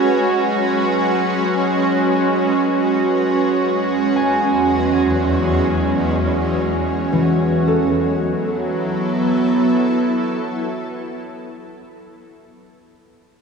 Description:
ambient; free time; F# minor; A4 = 440 Hz
shimmering ambient pad; sustained chords; 0.0-11.5 s; E2 to B4; -17 LUFS; right 2 dB; chorus, built-in reverb
analog drone; drone; 0.0-11.0 s; F#3; -24 LUFS; left 2 dB; chorus
concert harp; arpeggios; 4.2-11.0 s; E3 to G#5; -23 LUFS; left 3 dB; diffuse ambient delay
wet lush hall reverb, RT60 2.8 s; dreamy mix soaked in reverb; -16 LUFS; side -5 dB against mid
0.0-7.7 A section; 7.7-11.8 B section
0.0 C#5; 3.5 E; 7.7 F#m7
free time

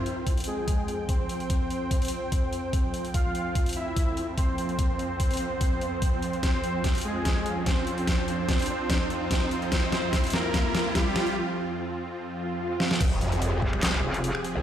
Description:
heavy wobble dubstep; 146 BPM; 4/4; half-time; F minor; A4 = 441 Hz
soft supersaw; melody; 0.0-11.4 s; G3 to F5; -31 LUFS; equal; cassette tape, low-pass filter, digital delay
supersaw pad; sustained chords; 0.0-14.6 s; F2 to G5; -32 LUFS; right 1 dB; sidechain pumping
riser, swell and impact; sound effects; 0.0-14.6 s; -36 LUFS; equal
dubstep drum kit; drums; 0.1-14.5 s; crash cymbal, finger snaps, handclaps, hi-hat, snare drum; -30 LUFS; equal; overdrive, small room ambience
electronic kick drum; drums; 0.3-13.7 s; -26 LUFS; equal; overdrive, small room ambience
growl bass; bass; 13.0-14.6 s; F1 to F2; -27 LUFS; equal; distortion, chorus, overdrive
metallic wobble bass; bass; 13.6-14.3 s; F1 to C2; -27 LUFS; equal; chorus, overdrive
light reverb; played on a big sound system in a bare room, large studio reverb; -24 LUFS; side -10 dB against mid
0.0-13.0 A section; 13.0-14.6 B section
build-up 0.0-13.0; riser 0.0-11.4; filter sweep on supersaw synth 0.0-13.0; drum fill 6.4-11.4, 12.8; break 11.4-13.0; swell 12.3-13.0; drop 13.0-14.6; impact 13.0-14.6
0.0 Fsus2; 13.0 Fmadd9
0.27 0.68 1.09 | 1.50 1.91 2.32 2.73 | 3.14 3.55 3.96 4.38 | 4.79 5.20 5.61 6.02 | 6.43 6.84 7.25 7.66 | 8.07 8.49 8.90 9.31 | 9.72 10.13 10.54 10.95 | 11.36 11.77 12.18 12.60 | 13.01 13.42 13.83 14.24

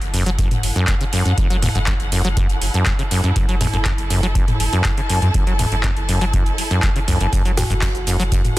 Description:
acid house; 121 BPM; 4/4; straight; F# minor; A4 = 435 Hz
warm sub bass; bass; 0.0-8.6 s; F#1 to F#2; -22 LUFS; equal; tube saturation, sidechain pumping
booming analog drum machine; drums; 0.0-8.6 s; handclaps, hi-hat, shaker, toms; -24 LUFS; equal; small room ambience
rich studio string section; texture; 0.0-8.6 s; E4 to A5; -26 LUFS; equal; sidechain pumping
acid bass, saw; riff; 0.1-8.4 s; E2 to F#3; -21 LUFS; equal; sidechain pumping, digital delay
electronic kick drum; drums; 0.4-8.4 s; -20 LUFS; equal; small room ambience
soft-mallet drum kit; drums; 7.3-8.6 s; hi-hat, snare drum; -34 LUFS; right 3 dB; sidechain pumping on hats, high-pass filter on hats, small room ambience, high-pass filter on snare, high-pass filter on room
kalimba; melody; 7.6-8.6 s; F#4; -27 LUFS; equal; digital delay
light reverb, small room ambience; dense, heavily limited modern master; -16 LUFS; side -17 dB against mid
0.0-8.6 A section
0.0 F#m7
0.38 0.88 | 1.38 1.87 2.37 2.86 | 3.36 3.85 4.35 4.85 | 5.34 5.84 6.33 6.83 | 7.33 7.82 8.32

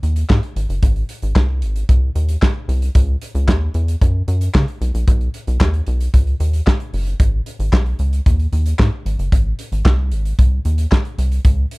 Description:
early-eighties boogie funk; 113 BPM; 4/4; straight; A4 = 440 Hz
rubbery square bass; bass; 0.0-11.7 s; F#1 to C#3; -17 LUFS; equal
modern studio drum kit; drums; 0.0-11.8 s; handclaps, hi-hat, kick drum, snare drum; -16 LUFS; equal
little or no reverb; -15 LUFS; side -24 dB against mid
0.0-11.8 A section
0.30 | 0.83 1.36 1.89 2.42 | 2.95 3.48 4.01 4.54 | 5.08 5.61 6.14 6.67 | 7.20 7.73 8.26 8.79 | 9.32 9.85 10.38 10.92 | 11.45

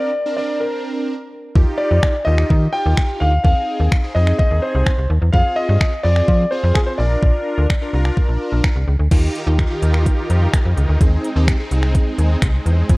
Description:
dance-pop; 127 BPM; 4/4; straight; Eb major; A4 = 443 Hz
warm grand piano; melody; 0.0-8.8 s; Ab4 to G5; -21 LUFS; equal; digital delay
big bright polysynth; accompaniment; 0.0-13.0 s; C4 to Bb4; -25 LUFS; equal; chorus, sidechain pumping
slap-like FM bass; bass; 1.6-13.0 s; Bb1 to F3; -16 LUFS; equal; sidechain pumping
pop drum kit; drums; 1.6-13.0 s; crash cymbal, finger snaps, hi-hat, kick drum; -16 LUFS; equal
supersaw chords; sustained chords; 9.1-13.0 s; Eb3 to Bb4; -27 LUFS; equal; sidechain pumping
little or no reverb; worn, warbling old tape, cassette tape, warbly pitch drift; -14 LUFS; side -23 dB against mid
0.0-9.1 A section; 9.1-13.0 B section
0.0 Bbadd9; 1.6 Ebadd9; 3.4 Ab/Eb; 5.3 Fm; 7.0 Bb; 9.1 Ebadd9; 11.0 Ab
0.14 0.61 1.08 | 1.56 2.03 2.50 2.98 | 3.45 3.92 4.39 4.86 | 5.34 5.81 6.28 6.75 | 7.23 7.70 8.17 8.64 | 9.12 9.59 10.06 10.53 | 11.01 11.48 11.95 12.42 | 12.90

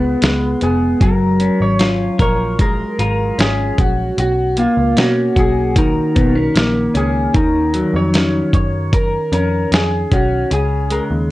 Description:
indie pop, bedroom pop; 76 BPM; 4/4; straight; F# major; A4 = 443 Hz
electric guitar through a small old amp; melody; 0.0-11.0 s; E#4 to C#5; -21 LUFS; equal; lush chorus, slapback echo
electric guitar through a small old amp; accompaniment; 0.0-11.3 s; C#3 to A#4; -17 LUFS; left 1 dB; analog chorus, warbly pitch drift
vintage muted picked electric bass; bass; 0.0-11.3 s; E#1 to B2; -20 LUFS; equal; transformer saturation
dusty soul sampler-style drum kit; drums; 0.2-11.1 s; hi-hat, kick drum, snare drum; -16 LUFS; equal
moderate studio reverb, RT60 0.6 s; worn, warbling old tape, cassette tape, warbly pitch drift; -13 LUFS; side -17 dB against mid
0.0-11.3 A section
0.0 C#7; 1.0 F#maj9; 4.2 Bmaj9; 7.3 D#m9; 10.5 C#5
0.22 | 1.01 1.80 2.60 3.39 | 4.18 4.97 5.76 6.55 | 7.35 8.14 8.93 9.72 | 10.51 11.31

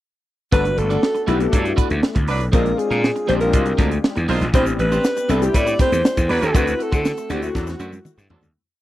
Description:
polished 1980s jazz-funk pop; 120 BPM; 4/4; straight; G major; A4 = 440 Hz
breathy alto saxophone; melody; 0.5-8.2 s; F#4 to D5; -22 LUFS; equal; slapback echo
warm horn section; second line; 0.5-8.5 s; F#3 to C5; -26 LUFS; right 3 dB
clear concert grand piano; accompaniment; 0.5-8.6 s; Ab3 to A4; -26 LUFS; left 6 dB; analog chorus
electric guitar at the edge of break-up; riff; 0.5-8.5 s; Ab3 to D5; -27 LUFS; right 3 dB; wide subtle chorus
gritty slap bass; bass; 0.5-8.5 s; G1 to D3; -21 LUFS; equal; overdrive
tight funk drum kit; drums; 0.5-8.5 s; hi-hat, kick drum, snare drum, toms; -19 LUFS; equal
tube shaker; percussion; 4.5-8.5 s; -40 LUFS; left 16 dB
little or no reverb; dry, close 1970s-style studio recording; -16 LUFS; side -14 dB against mid
0.5-8.6 verse
fade-out 6.5-8.6; drum fill 7.5-8.6
0.5 Gmaj9; 2.5 Bb9; 4.5 Am11; 6.5 D7
| 0.53 1.03 1.53 2.03 | 2.53 3.03 3.53 4.03 | 4.54 5.04 5.54 6.04 | 6.54 7.04 7.55 8.05

